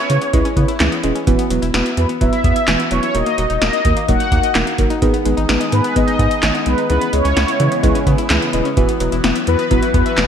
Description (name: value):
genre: synth-pop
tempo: 128 BPM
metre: 4/4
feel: straight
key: unclear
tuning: A4 = 442 Hz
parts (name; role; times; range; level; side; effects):
- mellow synth brass; melody; 0.0-10.3 s; B4 to F#5; -20 LUFS; equal; chorus, ping-pong delay
- analog pluck; arpeggios; 0.0-10.3 s; D#3 to E5; -24 LUFS; left 5 dB; chorus, ping-pong delay
- muted felt-like synth keys; accompaniment; 0.1-10.3 s; A#3 to C#5; -20 LUFS; right 1 dB; chorus
- saturated sub bass; bass; 0.1-10.3 s; D#1 to C#3; -19 LUFS; equal; none
- electro analog drum machine; drums; 0.1-10.3 s; handclaps, hi-hat, kick drum, snare drum; -18 LUFS; equal; gated reverb
- phased analog pad; sustained chords; 5.3-10.3 s; C#3 to G#4; -25 LUFS; left 2 dB; phaser, chorus
room: moderate lush hall reverb, RT60 1.6 s, digital ambience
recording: bright 1980s-style digital production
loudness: -14 LUFS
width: side -8 dB against mid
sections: 0.0-10.3 A section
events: none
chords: 0.0 C#m7; 1.3 Esus2; 3.1 D#m; 5.0 G#m; 6.9 C#m7; 8.8 Esus2